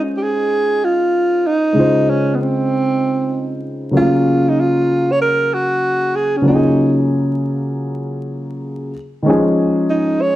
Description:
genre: hip hop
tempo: 96 BPM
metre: 4/4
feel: swing 65% on 16ths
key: Db major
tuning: A4 = 442 Hz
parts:
  - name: dark baby grand piano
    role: accompaniment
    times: 0.0-10.4 s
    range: Db3 to F5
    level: -17 LUFS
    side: left 1 dB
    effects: none
  - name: breathy alto saxophone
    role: melody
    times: 0.2-10.4 s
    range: Cb4 to Db5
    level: -16 LUFS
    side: right 1 dB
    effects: slapback echo
room: moderate echo chamber reverb, RT60 1.2 s, small room ambience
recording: dark, warm production, vinyl crackle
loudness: -14 LUFS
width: side -14 dB against mid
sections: 0.0-10.4 A section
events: none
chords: 0.0 Dbmaj9; 3.9 Gbmaj9/Db; 9.3 Dbadd9

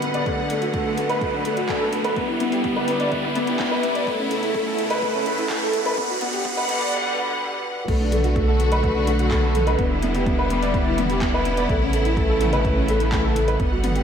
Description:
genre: piano and strings electronica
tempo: 126 BPM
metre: 4/4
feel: straight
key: B minor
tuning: A4 = 439 Hz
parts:
  - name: clear studio string section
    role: sustained chords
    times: 0.0-14.0 s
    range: C#3 to F#5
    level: -26 LUFS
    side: right 1 dB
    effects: low-pass filter
  - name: dark grand piano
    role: riff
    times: 0.0-14.0 s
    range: A3 to D5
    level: -22 LUFS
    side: left 1 dB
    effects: analog chorus, ping-pong delay
  - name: warm sub bass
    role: bass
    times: 0.0-14.0 s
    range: E1 to B1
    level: -24 LUFS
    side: equal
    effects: sidechain pumping, high-pass filter
  - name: deep house drum kit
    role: drums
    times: 0.0-14.0 s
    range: crash cymbal, handclaps, hi-hat, toms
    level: -33 LUFS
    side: equal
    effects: overdrive
  - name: riser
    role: sound effects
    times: 0.0-6.9 s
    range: none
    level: -31 LUFS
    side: right 1 dB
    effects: none
  - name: electronic kick drum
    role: drums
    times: 0.3-13.7 s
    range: none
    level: -27 LUFS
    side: equal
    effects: overdrive
room: wet lush hall reverb, RT60 1.6 s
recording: dreamy mix soaked in reverb, high-pass filter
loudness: -19 LUFS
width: side -7 dB against mid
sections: 0.0-7.9 A section; 7.9-14.0 B section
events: build-up 0.0-7.9; riser 0.0-6.9; filter sweep on string section 0.0-7.9; filter sweep 0.0-7.9; drop 7.9-14.0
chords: 0.3 Bm7; 2.2 Em7; 4.1 Aadd9; 6.0 Gmaj7; 7.9 Bm7; 9.8 Em7; 11.7 Aadd9

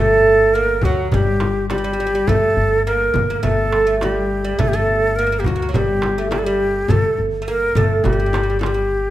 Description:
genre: Arabic maqam ensemble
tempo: 104 BPM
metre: 4/4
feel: straight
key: G maqam nahawand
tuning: A4 = 441 Hz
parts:
  - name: breathy bright ney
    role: melody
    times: 0.0-9.1 s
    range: F#4 to Bb4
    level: -18 LUFS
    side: equal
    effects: none
  - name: oud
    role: second line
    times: 0.0-8.8 s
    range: F#3 to Bb3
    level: -22 LUFS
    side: right 3 dB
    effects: none
  - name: upright bass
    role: bass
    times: 0.0-9.1 s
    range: G1 to D2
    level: -23 LUFS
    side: left 1 dB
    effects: none
  - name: darbuka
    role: percussion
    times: 0.2-8.9 s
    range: none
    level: -25 LUFS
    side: right 1 dB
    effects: none
  - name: frame drum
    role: percussion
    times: 0.8-8.8 s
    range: none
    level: -25 LUFS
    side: left 2 dB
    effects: none
room: moderate recital hall reverb, RT60 1.5 s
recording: minimal, uncompressed stereo recording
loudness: -15 LUFS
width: side -14 dB against mid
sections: 0.0-9.1 A section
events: none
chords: none

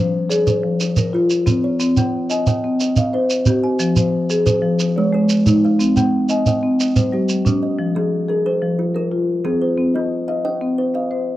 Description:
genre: southern african traditional, mbira-style interlocking cycle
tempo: 120 BPM (dotted quarters)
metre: 12/8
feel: straight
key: F equiheptatonic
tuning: A4 = 435 Hz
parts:
  - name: kalimba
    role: arpeggios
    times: 0.0-11.3 s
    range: F3 to Ab5+43c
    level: -22 LUFS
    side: right 3 dB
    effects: none
  - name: marimba with soft mallets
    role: arpeggios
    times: 0.0-11.4 s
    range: F3 to G5-29c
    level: -18 LUFS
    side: left 2 dB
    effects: none
  - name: shekere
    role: percussion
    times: 0.3-7.6 s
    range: none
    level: -20 LUFS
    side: right 2 dB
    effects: none
room: small room ambience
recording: dry, close 1970s-style studio recording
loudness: -15 LUFS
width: side -15 dB against mid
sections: 0.0-7.8 A section; 7.8-11.4 A section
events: none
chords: 0.0 Fm; 1.8 Cm; 3.8 Fm; 4.8 Ab; 5.8 Cm; 6.8 G5; 7.8 Fm; 9.8 Cm

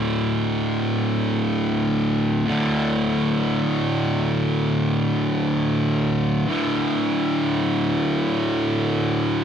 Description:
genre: metal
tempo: free time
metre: none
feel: none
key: unclear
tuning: A4 = 443 Hz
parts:
  - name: fuzz guitar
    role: solo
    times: 0.0-9.4 s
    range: D2 to D3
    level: -19 LUFS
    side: equal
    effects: distortion
room: little or no reverb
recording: dry, close 1970s-style studio recording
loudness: -19 LUFS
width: side -8 dB against mid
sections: 0.0-9.4 A section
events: none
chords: 0.0 D5

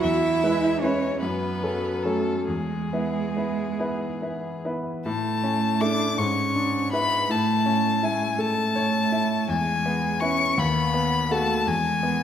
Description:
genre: classical, slow romantic movement for piano trio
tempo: 45-56 BPM (dotted quarters)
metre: 6/8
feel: rubato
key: A major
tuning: A4 = 440 Hz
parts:
  - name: clear violin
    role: melody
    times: 0.0-12.2 s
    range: G#4 to D6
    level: -26 LUFS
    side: left 5 dB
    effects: none
  - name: rich cello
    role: second line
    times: 0.0-12.2 s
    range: G#3 to E4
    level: -27 LUFS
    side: right 5 dB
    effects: none
  - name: clear grand piano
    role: accompaniment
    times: 0.0-12.2 s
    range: D#2 to C#5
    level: -26 LUFS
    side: left 2 dB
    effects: none
room: wet scoring stage reverb, RT60 1.6 s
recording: none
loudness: -22 LUFS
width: side -9 dB against mid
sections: 0.0-5.1 A section; 5.1-12.2 B section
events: none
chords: 0.0 E; 1.2 F#m; 2.5 E; 5.1 A; 6.2 E7/G#; 7.3 A; 9.5 E; 10.6 B7/D#; 11.7 E

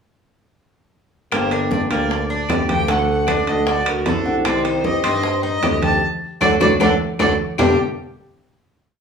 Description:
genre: latin, Cuban son and guajira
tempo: 153 BPM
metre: 4/4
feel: straight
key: G harmonic minor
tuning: A4 = 440 Hz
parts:
  - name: rich violin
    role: melody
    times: 1.3-7.8 s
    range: A4 to A5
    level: -23 LUFS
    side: equal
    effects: none
  - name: flamenco guitar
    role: accompaniment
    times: 1.3-7.8 s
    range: G2 to G4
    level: -23 LUFS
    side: equal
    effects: none
  - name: Cuban tres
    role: arpeggios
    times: 1.3-7.8 s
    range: G3 to G4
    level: -23 LUFS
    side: right 1 dB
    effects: none
  - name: warm tuba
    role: bass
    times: 1.3-7.8 s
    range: G1 to G2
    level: -23 LUFS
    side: equal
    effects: none
  - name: bongos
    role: percussion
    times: 1.3-7.7 s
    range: none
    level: -27 LUFS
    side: left 2 dB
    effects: none
  - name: claves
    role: percussion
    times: 1.3-7.7 s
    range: none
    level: -30 LUFS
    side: left 5 dB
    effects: none
  - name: congas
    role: percussion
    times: 1.3-7.7 s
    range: none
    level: -27 LUFS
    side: right 2 dB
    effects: none
  - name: timbales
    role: percussion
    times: 1.3-7.7 s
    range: none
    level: -26 LUFS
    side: right 1 dB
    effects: none
room: wet large studio reverb, RT60 0.8 s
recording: band playing live in one room, small room ambience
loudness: -16 LUFS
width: side -6 dB against mid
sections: 1.3-7.6 verse; 7.6-9.0 final chord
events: band accent 6.0-7.6; drum fill 6.4-7.6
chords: 1.3 Gm; 2.9 D; 4.5 Cm; 6.0 D; 7.6 G5

